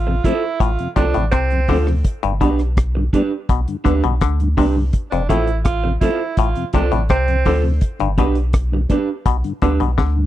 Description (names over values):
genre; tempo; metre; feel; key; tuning
roots reggae; 83 BPM; 4/4; straight; G mixolydian; A4 = 439 Hz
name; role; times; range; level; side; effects
clear tenor saxophone; second line; 0.0-7.6 s; C4 to F4; -23 LUFS; right 5 dB; dub echo
warm sub bass; bass; 0.0-10.3 s; F1 to D2; -19 LUFS; equal; none
electric guitar through a small old amp; accompaniment; 0.1-9.8 s; D4 to C5; -22 LUFS; right 5 dB; none
mellow tonewheel organ; accompaniment; 0.1-10.3 s; F2 to D4; -24 LUFS; left 3 dB; chorus vibrato, slow rotary speaker
deep reggae drum kit; drums; 0.2-10.2 s; hi-hat, kick drum, rim click, snare drum; -18 LUFS; equal; none
muted clav; riff; 0.6-10.2 s; F2 to D3; -23 LUFS; left 11 dB; none
room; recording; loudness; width
small room reverb; dry, close 1970s-style studio recording; -15 LUFS; side -13 dB against mid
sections
0.0-10.3 A section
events
drum fill 10.0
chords
0.0 F; 2.0 G; 4.9 F; 7.8 G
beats
0.60 1.32 | 2.05 2.77 3.49 4.21 | 4.93 5.65 6.38 7.10 | 7.82 8.54 9.26 9.98